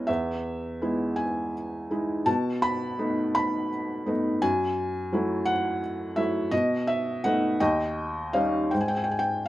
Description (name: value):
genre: classical, lyrical solo piano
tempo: 56 BPM (dotted quarters)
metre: 6/8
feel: uneven beats, rubato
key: E major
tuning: A4 = 440 Hz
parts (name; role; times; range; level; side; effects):
- felt-muted upright piano; solo; 0.0-9.5 s; D#2 to B5; -24 LUFS; equal; none
room: light reverb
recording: none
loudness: -24 LUFS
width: side -15 dB against mid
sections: 0.0-8.7 A section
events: none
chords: 0.1 Emaj7; 2.3 B7; 4.4 F#m7; 6.5 B7; 7.6 D#7; 8.7 Abmaj7(no3)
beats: | 0.08 1.19 | 2.28 3.36 | 4.42 5.47 | 6.52 7.60 | 8.72